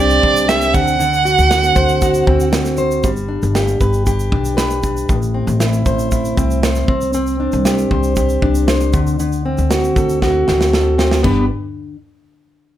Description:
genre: acoustic pop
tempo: 117 BPM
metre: 4/4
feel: straight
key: G major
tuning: A4 = 445 Hz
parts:
  - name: rich violin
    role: melody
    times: 0.0-2.5 s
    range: D5 to F#5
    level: -15 LUFS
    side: right 4 dB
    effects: none
  - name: fingerpicked plugged-in steel-string acoustic guitar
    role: accompaniment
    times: 0.0-12.0 s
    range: A2 to C5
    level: -17 LUFS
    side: equal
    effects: none
  - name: upright bass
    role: bass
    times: 0.0-11.5 s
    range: G1 to D2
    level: -19 LUFS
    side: left 1 dB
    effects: none
  - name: modern studio drum kit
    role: drums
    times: 0.1-11.4 s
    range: crash cymbal, kick drum, shaker, snare drum, toms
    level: -20 LUFS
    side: right 1 dB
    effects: none
room: light reverb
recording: none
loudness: -13 LUFS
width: side -12 dB against mid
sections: 0.0-3.0 A section; 3.0-11.2 B section; 11.2-12.8 C section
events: drum fill 10.2-11.2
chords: 0.0 Csus2; 0.7 D7; 3.0 G; 5.1 Am; 6.9 Csus2; 8.9 D7; 11.2 G

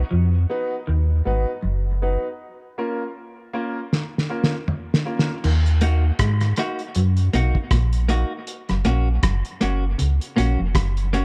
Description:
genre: dub reggae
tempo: 79 BPM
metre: 4/4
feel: swing 58% on 16ths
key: Eb minor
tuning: A4 = 442 Hz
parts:
  - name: warm sub bass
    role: bass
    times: 0.0-11.2 s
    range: F1 to Ab2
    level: -22 LUFS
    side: equal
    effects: none
  - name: semi-hollow electric guitar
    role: riff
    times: 0.1-11.0 s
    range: F2 to Ab3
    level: -29 LUFS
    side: equal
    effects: lush chorus, dub echo
  - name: warm grand piano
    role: stabs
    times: 0.5-5.3 s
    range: Bb3 to B4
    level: -31 LUFS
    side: equal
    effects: dub echo
  - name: cloth-damped thuddy drum kit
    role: drums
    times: 3.9-11.2 s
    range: crash cymbal, hi-hat, kick drum, rim click, snare drum, toms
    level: -26 LUFS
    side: equal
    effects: none
  - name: semi-hollow electric guitar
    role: accompaniment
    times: 5.8-11.2 s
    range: Bb3 to Gb4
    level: -29 LUFS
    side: equal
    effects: dub echo
room: light reverb, small room reverb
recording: dark, warm production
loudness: -22 LUFS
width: mono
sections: 0.0-5.4 A section; 5.4-11.2 B section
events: break 0.0-5.4; drum fill 3.9-5.4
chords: 0.0 B; 2.4 Bbm; 5.4 Ebm; 8.5 Gb

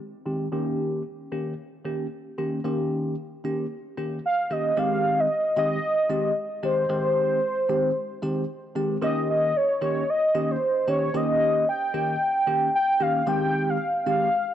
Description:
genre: afrobeats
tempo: 113 BPM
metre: 4/4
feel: swing 55% on 16ths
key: Ab major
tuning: A4 = 440 Hz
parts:
  - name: bell-like tine electric piano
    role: accompaniment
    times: 0.3-14.3 s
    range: Eb3 to G4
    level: -27 LUFS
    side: equal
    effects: phaser, low-pass filter
  - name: warm velvety synth lead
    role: melody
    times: 4.3-14.5 s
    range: C5 to G5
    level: -23 LUFS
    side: equal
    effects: chorus, analog delay
room: moderate lush hall reverb, RT60 2.3 s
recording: dry, gritty hardware recording, cassette tape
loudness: -22 LUFS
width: side -10 dB against mid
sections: 0.0-4.8 A section; 4.8-14.5 B section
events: filter sweep on tine electric piano 0.0-4.8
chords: 0.0 Abmaj7; 0.5 Eb7; 4.8 Abmaj7; 9.0 Eb7; 13.3 Abmaj7

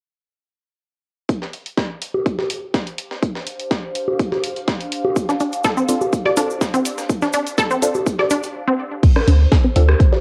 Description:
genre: minimal techno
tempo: 124 BPM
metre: 4/4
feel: straight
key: D minor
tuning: A4 = 440 Hz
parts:
  - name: breakbeat sampler-style drum kit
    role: drums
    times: 1.3-10.2 s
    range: hi-hat, snare drum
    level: -33 LUFS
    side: equal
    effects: sidechain pumping on hats, high-pass filter on hats, small room ambience, cassette tape, high-pass filter on snare
  - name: electronic kick drum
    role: drums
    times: 1.3-10.1 s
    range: none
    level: -19 LUFS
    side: equal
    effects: high-pass filter on kick, small room ambience, cassette tape
  - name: ethereal airy pad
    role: texture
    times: 3.2-8.5 s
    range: D4 to F5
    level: -33 LUFS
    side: equal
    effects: ensemble chorus, built-in reverb, phaser, sidechain pumping, cassette tape
  - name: house drum kit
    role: drums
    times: 1.5-9.9 s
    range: crash cymbal, hi-hat, snare drum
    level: -30 LUFS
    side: equal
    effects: small room ambience, cassette tape
  - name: electronic bongos and rim click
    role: percussion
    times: 2.1-10.2 s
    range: none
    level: -25 LUFS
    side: equal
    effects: small room ambience, cassette tape
  - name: cabasa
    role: percussion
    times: 5.2-8.5 s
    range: none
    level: -33 LUFS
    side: equal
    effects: none
  - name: resonant blip pluck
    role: riff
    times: 5.3-10.2 s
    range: C4 to D5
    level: -23 LUFS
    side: equal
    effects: chorus, sidechain pumping, cassette tape, tape echo
  - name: filtered dub chord stab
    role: stabs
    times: 5.9-9.8 s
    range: C4 to A4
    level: -26 LUFS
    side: equal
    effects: chorus, vintage 12-bit sampler grit, cassette tape, tape echo
  - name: pulsing gated texture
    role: texture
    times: 9.0-10.2 s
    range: C5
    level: -34 LUFS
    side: equal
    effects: none
  - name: punchy sub bass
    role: bass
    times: 9.3-9.9 s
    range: D2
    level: -14 LUFS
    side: equal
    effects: sidechain pumping
room: light reverb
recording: home recording on cassette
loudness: -19 LUFS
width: mono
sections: 1.3-9.0 A section; 9.0-10.2 B section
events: fade-in on ambient pad 1.3-9.0; break 8.5-9.0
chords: 1.3 Dm7

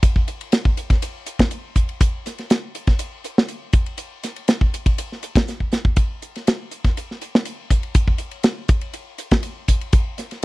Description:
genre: jazz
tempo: 121 BPM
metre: 4/4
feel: straight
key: none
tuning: none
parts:
  - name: modern studio drum kit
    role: drums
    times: 0.0-10.4 s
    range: hi-hat, kick drum, ride cymbal, snare drum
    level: -17 LUFS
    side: equal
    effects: none
room: little or no reverb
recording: dry, close 1970s-style studio recording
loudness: -18 LUFS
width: side -21 dB against mid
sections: 0.0-10.4 A section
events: drum fill 5.5-6.0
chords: none

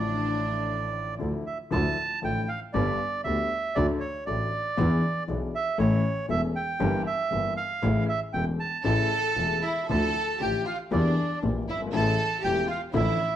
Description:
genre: tango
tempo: 117 BPM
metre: 4/4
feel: rubato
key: D harmonic minor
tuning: A4 = 440 Hz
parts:
  - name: bandoneon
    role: melody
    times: 0.0-13.4 s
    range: C#5 to A5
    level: -29 LUFS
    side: right 4 dB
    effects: none
  - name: clear studio violin section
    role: second line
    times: 0.0-1.1, 8.8-13.4 s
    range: D4 to A4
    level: -31 LUFS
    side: left 2 dB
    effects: none
  - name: warm grand piano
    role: accompaniment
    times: 0.0-13.2 s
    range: E1 to A4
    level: -30 LUFS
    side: left 4 dB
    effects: none
  - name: bright double bass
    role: bass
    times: 0.0-13.2 s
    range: E1 to E2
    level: -29 LUFS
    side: right 1 dB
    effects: none
room: moderate large studio reverb, RT60 1.1 s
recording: worn, warbling old tape, cassette tape, warbly pitch drift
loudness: -24 LUFS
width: side -11 dB against mid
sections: 0.0-1.7 A section; 1.7-13.4 B section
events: none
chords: 0.0 Dmadd9; 2.7 G; 3.8 D; 4.8 E7; 5.8 A; 6.8 Edim/G; 7.8 A; 9.9 Dmadd9; 10.9 Edim; 11.9 A

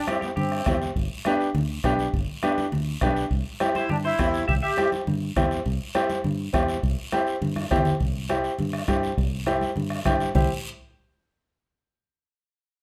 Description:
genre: latin, cumbia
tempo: 204 BPM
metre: 4/4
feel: straight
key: C major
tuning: A4 = 442 Hz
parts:
  - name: accordion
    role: melody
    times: 0.0-0.8, 3.8-4.9 s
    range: B3 to G4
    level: -29 LUFS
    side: equal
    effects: light tremolo tuning
  - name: clean electric guitar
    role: second line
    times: 0.0-0.8, 3.8-4.9 s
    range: G4 to E5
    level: -34 LUFS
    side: equal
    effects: none
  - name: warm upright piano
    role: accompaniment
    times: 0.1-10.5 s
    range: B3 to G4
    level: -28 LUFS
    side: equal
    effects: none
  - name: bombo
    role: percussion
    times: 0.1-10.4 s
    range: none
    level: -31 LUFS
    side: equal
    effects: none
  - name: congas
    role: percussion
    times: 0.1-10.4 s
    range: none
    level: -33 LUFS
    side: equal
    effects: none
  - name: guiro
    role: percussion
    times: 0.1-10.4 s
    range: none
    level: -42 LUFS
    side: equal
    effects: none
  - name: fingered electric bass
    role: bass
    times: 0.4-10.5 s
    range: G1 to G2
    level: -31 LUFS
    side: equal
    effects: none
room: moderate studio reverb, RT60 0.7 s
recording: none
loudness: -25 LUFS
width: mono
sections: 0.0-8.0 A section; 8.0-10.4 B section; 10.4-11.5 C section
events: drum fill 7.6-8.0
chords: 0.0 C; 1.0 G; 3.3 C

